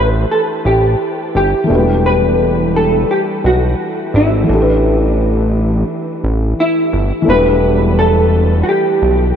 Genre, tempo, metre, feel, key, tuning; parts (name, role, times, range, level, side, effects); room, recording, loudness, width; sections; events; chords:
hip hop; 86 BPM; 4/4; swing 63% on 16ths; E minor; A4 = 439 Hz
vintage hollow-body jazz guitar; melody; 0.0-9.3 s; E4 to B4; -15 LUFS; equal; ensemble chorus, low-pass filter, analog delay
felt-muted upright piano; accompaniment; 0.0-9.4 s; E3 to B4; -17 LUFS; left 1 dB; low-pass filter
fat analog bass; bass; 0.0-9.3 s; E1 to B1; -14 LUFS; equal
moderate huge ambient reverb, RT60 8.0 s; dreamy mix soaked in reverb, cassette tape; -11 LUFS; side -8 dB against mid
0.0-7.3 A section; 7.3-9.4 B section
0.0 A7(no3); 1.7 Em7; 4.5 A5; 7.3 Em7